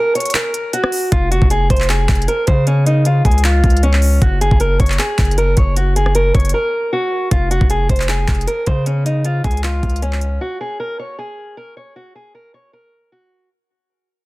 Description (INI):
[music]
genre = hip hop, trap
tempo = 155 BPM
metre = 4/4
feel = half-time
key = F phrygian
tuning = A4 = 441 Hz
[part]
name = picked acoustic archtop guitar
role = melody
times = 0.0-13.5 s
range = Db4 to Db5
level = -19 LUFS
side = equal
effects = low-pass filter, tape echo
[part]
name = trap drum kit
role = drums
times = 0.2-10.3 s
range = handclaps, hi-hat, kick drum, rim click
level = -16 LUFS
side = equal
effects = none
[part]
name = hard-hitting 808-style bass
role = bass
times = 1.1-10.4 s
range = F1 to Db3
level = -16 LUFS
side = equal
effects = none
[sound]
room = little or no reverb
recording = dense, heavily limited modern master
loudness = -13 LUFS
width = side -20 dB against mid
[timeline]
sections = 0.0-7.3 A section; 7.3-13.5 B section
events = break 0.0-1.1, 6.5-7.3; fade-out 7.3-13.5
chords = 0.0 N.C.; 1.1 Fm; 2.7 Db; 4.2 Gbadd9; 7.3 Fm; 8.9 Db; 10.4 N.C.